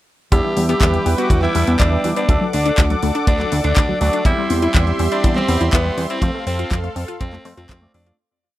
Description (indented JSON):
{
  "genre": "italo disco",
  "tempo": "122 BPM",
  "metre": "4/4",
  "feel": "straight",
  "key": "E minor",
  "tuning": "A4 = 443 Hz",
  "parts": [
    { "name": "raspy alto saxophone", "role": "melody", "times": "0.3-8.2 s", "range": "B3 to G4", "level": "-22 LUFS", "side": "equal", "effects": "vintage 12-bit sampler grit, tape echo" },
    { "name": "warm analog pad", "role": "sustained chords", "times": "0.3-8.2 s", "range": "G4 to D6", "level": "-25 LUFS", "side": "right 1 dB", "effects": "chorus, tremolo" },
    { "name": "wide unison pluck", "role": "arpeggios", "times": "0.3-8.2 s", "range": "D3 to F4", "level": "-25 LUFS", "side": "left 2 dB", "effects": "tape echo" },
    { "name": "electric guitar with an envelope filter", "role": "stabs", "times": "0.3-8.2 s", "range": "F#3 to D5", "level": "-26 LUFS", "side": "right 2 dB", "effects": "none" },
    { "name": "chorused synth bass", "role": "bass", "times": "0.3-8.1 s", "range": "D2 to F2", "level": "-20 LUFS", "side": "equal", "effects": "tube saturation" },
    { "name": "house drum kit", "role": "drums", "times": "0.3-8.2 s", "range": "handclaps, hi-hat", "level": "-26 LUFS", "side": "left 1 dB", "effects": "overdrive, studio reverb" },
    { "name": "kick drum", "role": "drums", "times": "0.3-7.8 s", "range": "none", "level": "-17 LUFS", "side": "equal", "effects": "studio reverb" }
  ],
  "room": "little or no reverb",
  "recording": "dry, close 1970s-style studio recording",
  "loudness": "-15 LUFS",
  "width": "side -15 dB against mid",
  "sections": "0.3-8.2 verse",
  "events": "fade-out 5.6-8.2",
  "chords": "0.3 Em7; 2.3 D; 4.3 C/E; 6.2 F"
}